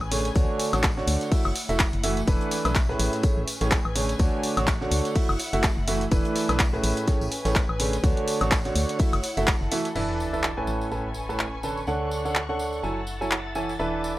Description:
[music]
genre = piano house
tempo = 125 BPM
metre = 4/4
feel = swing 57% on 16ths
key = A major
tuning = A4 = 440 Hz
[part]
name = organ-like FM bass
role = bass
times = 0.0-14.2 s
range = E1 to D2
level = -29 LUFS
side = equal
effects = sidechain pumping
[part]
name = punchy analog drum machine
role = drums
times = 0.0-13.4 s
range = crash cymbal, handclaps, hi-hat, woodblock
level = -28 LUFS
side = left 1 dB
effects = none
[part]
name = dark studio string section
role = texture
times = 0.0-14.2 s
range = A3 to C#6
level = -36 LUFS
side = equal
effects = sidechain pumping
[part]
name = clear grand piano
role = riff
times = 0.1-14.1 s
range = A2 to A5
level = -27 LUFS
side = right 2 dB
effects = sidechain pumping, analog delay
[part]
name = compact cocktail drum kit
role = drums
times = 0.1-10.0 s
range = hi-hat, snare drum, tambourine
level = -40 LUFS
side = equal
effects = none
[part]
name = tambourine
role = percussion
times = 0.1-14.1 s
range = none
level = -42 LUFS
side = equal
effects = none
[part]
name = electronic kick drum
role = drums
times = 0.4-9.6 s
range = none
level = -24 LUFS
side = equal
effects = none
[part]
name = warm studio violin section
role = sustained chords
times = 10.0-14.2 s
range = D4 to A6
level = -39 LUFS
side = left 1 dB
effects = sidechain pumping, low-pass filter
[part]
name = sub drop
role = sound effects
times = 10.0-11.9 s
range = none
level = -36 LUFS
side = equal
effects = none
[sound]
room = small room ambience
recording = dry, gritty hardware recording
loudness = -22 LUFS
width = side -16 dB against mid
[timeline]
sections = 0.0-10.0 A section; 10.0-14.2 B section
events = impact 10.0-11.9; filter sweep on violin section 10.0-14.2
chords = 0.4 Dmaj7; 1.3 F#m7; 2.3 E7sus4; 3.0 Amaj9; 4.2 Dmaj7; 5.2 F#m7; 6.1 E7sus4; 6.8 Amaj9; 8.0 Dmaj7; 9.0 F#m7; 10.0 E7sus4; 10.7 Amaj9; 11.9 Dmaj7; 12.8 F#m7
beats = | 0.36 0.84 1.32 1.80 | 2.28 2.76 3.24 3.72 | 4.20 4.68 5.16 5.64 | 6.12 6.60 7.08 7.56 | 8.04 8.52 9.00 9.48 | 9.96 10.44 10.92 11.40 | 11.88 12.36 12.84 13.32 | 13.80

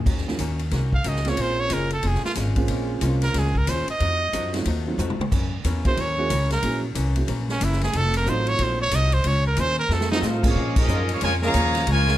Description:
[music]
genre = jazz, big band swing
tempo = 183 BPM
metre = 4/4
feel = swing 62% on 8ths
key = Bb minor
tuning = A4 = 440 Hz
[part]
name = clear trumpet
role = melody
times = 0.0-10.2 s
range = Db4 to F5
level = -25 LUFS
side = right 2 dB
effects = none
[part]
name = upright bass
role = bass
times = 0.0-12.2 s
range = F1 to Bb2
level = -24 LUFS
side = equal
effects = none
[part]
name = archtop guitar, miked and amplified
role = accompaniment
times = 0.1-12.1 s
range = Gb2 to Gb4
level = -32 LUFS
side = left 5 dB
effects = none
[part]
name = swinging big-band drum kit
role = drums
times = 0.1-12.1 s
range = crash cymbal, hi-hat, kick drum, ride cymbal, snare drum, toms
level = -27 LUFS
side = equal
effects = none
[part]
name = warm concert grand piano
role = accompaniment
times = 0.3-10.6 s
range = Gb3 to Gb4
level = -29 LUFS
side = right 4 dB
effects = none
[part]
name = bright trumpet section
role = melody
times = 10.1-12.2 s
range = Bb3 to Bb5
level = -24 LUFS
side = equal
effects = none
[part]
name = clear trombone section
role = second line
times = 10.1-12.2 s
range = Db3 to F4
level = -29 LUFS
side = right 3 dB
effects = none
[part]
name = bright trombone section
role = sustained chords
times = 10.9-11.5 s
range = Ab3 to Bb4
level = -30 LUFS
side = left 1 dB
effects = none
[sound]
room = light reverb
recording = none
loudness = -20 LUFS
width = side -13 dB against mid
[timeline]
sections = 0.0-10.6 A section; 10.6-12.2 B section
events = trumpet solo 0.0-10.6; drum fill 5.0-5.3, 9.9-10.2; band accent 10.7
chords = 0.1 Ebm7; 1.4 Bbm7; 4.0 F7b9; 5.3 Gb7; 7.9 F7b9; 9.3 Bbm7; 9.9 F7b9; 10.6 Bbm7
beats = | 0.06 0.39 0.72 1.04 | 1.37 1.70 2.03 2.36 | 2.69 3.02 3.35 3.67 | 4.00 4.33 4.66 4.99 | 5.32 5.64 5.97 6.30 | 6.63 6.96 7.29 7.61 | 7.94 8.27 8.60 8.92 | 9.25 9.58 9.91 10.23 | 10.56 10.89 11.21 11.54 | 11.87

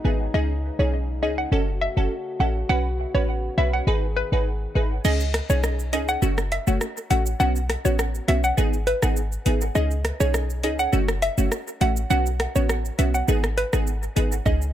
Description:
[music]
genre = dancehall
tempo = 102 BPM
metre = 4/4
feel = straight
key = unclear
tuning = A4 = 444 Hz
[part]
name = wavetable chord stab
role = accompaniment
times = 0.0-14.6 s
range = A3 to B4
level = -28 LUFS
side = right 2 dB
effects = none
[part]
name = mellow French horn section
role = sustained chords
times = 0.0-5.0 s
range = B2 to G#4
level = -34 LUFS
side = left 2 dB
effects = sidechain pumping
[part]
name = short 808-style bass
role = bass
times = 0.0-14.7 s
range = F#1 to C#2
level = -23 LUFS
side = equal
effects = none
[part]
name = hollow square pluck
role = melody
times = 0.3-14.7 s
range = B4 to F#5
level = -27 LUFS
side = equal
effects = chorus, dub echo
[part]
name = island pop drum kit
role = drums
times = 5.0-14.7 s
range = crash cymbal, hi-hat, kick drum, rim click, shaker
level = -29 LUFS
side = equal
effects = dub echo
[sound]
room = little or no reverb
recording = echo-heavy mix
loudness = -20 LUFS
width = side -11 dB against mid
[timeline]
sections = 0.0-5.0 A section; 5.0-14.7 B section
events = kick muted 5.0-14.5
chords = 0.3 C#sus2; 1.5 F#m; 2.7 Bsus2; 3.9 G#m; 5.0 C#sus2; 6.2 F#m; 7.4 Bsus2; 8.6 G#m; 9.8 C#sus2; 10.9 F#m; 12.1 Bsus2; 13.3 G#m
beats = | 0.34 0.93 1.52 2.11 | 2.69 3.28 3.87 4.46 | 5.05 5.64 6.22 6.81 | 7.40 7.99 8.58 9.17 | 9.75 10.34 10.93 11.52 | 12.11 12.70 13.28 13.87 | 14.46

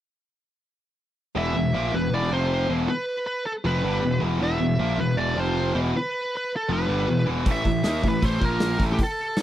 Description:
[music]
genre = heavy metal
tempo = 158 BPM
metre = 4/4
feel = straight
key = unclear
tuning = A4 = 442 Hz
[part]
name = high-gain lead guitar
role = melody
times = 1.4-9.4 s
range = G4 to E5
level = -27 LUFS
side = right 1 dB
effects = distortion
[part]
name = tight distorted guitar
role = riff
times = 1.4-9.0 s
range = E2 to D#4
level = -25 LUFS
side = equal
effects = distortion
[part]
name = fuzz picked electric bass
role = bass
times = 1.4-9.0 s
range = E1 to D#2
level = -26 LUFS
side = equal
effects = overdrive
[part]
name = big rock drum kit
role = drums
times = 7.5-9.4 s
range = hi-hat, kick drum, snare drum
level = -24 LUFS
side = equal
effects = none
[sound]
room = little or no reverb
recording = dry, close 1970s-style studio recording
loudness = -22 LUFS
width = side -12 dB against mid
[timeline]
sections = 1.4-9.4 A section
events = none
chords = 1.4 E5; 2.3 F5; 2.7 Em; 5.4 F5; 5.7 Em; 7.5 A5; 8.4 A#5; 8.8 A5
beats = | 1.37 1.75 2.13 2.51 | 2.89 3.27 3.65 4.03 | 4.41 4.79 5.17 5.56 | 5.94 6.32 6.70 7.08 | 7.46 7.84 8.22 8.61 | 8.99 9.37

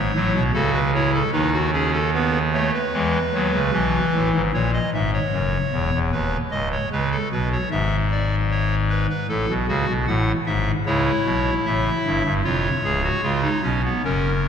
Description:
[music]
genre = classical, baroque-style 3-part fugue for pipe organ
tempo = 76 BPM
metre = 4/4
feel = straight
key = A major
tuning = A4 = 439 Hz
[part]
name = pipe organ, clarinet reed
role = solo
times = 0.0-14.5 s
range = C#1 to F#5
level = -19 LUFS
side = equal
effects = none
[sound]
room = wet cathedral reverb, RT60 4.1 s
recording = none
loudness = -19 LUFS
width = side -7 dB against mid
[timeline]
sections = 0.0-4.5 A section; 4.5-14.5 B section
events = none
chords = 0.0 F#m7; 1.3 B7/D#; 2.9 E; 4.5 F#7; 6.1 B; 7.7 E7/G#; 9.3 A; 10.9 C#m7b5; 12.4 C#7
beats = 0.54 | 1.33 2.13 2.93 3.73 | 4.54 5.33 6.13 6.92 | 7.71 8.51 9.29 10.08 | 10.87 11.65 12.45 13.24 | 14.05

